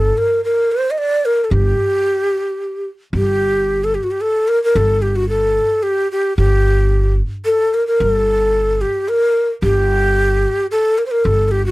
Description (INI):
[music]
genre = Arabic maqam ensemble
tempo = 111 BPM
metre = 3/4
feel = straight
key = G maqam nahawand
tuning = A4 = 439 Hz
[part]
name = breathy hollow ney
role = melody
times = 0.0-11.7 s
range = F#4 to Eb5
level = -15 LUFS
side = equal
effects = none
[part]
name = upright bass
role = bass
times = 0.0-11.7 s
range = G1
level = -18 LUFS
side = equal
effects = none
[sound]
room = light reverb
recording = dry, close 1970s-style studio recording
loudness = -14 LUFS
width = side -19 dB against mid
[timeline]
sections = 0.0-3.1 A section; 3.1-11.7 B section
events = none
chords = none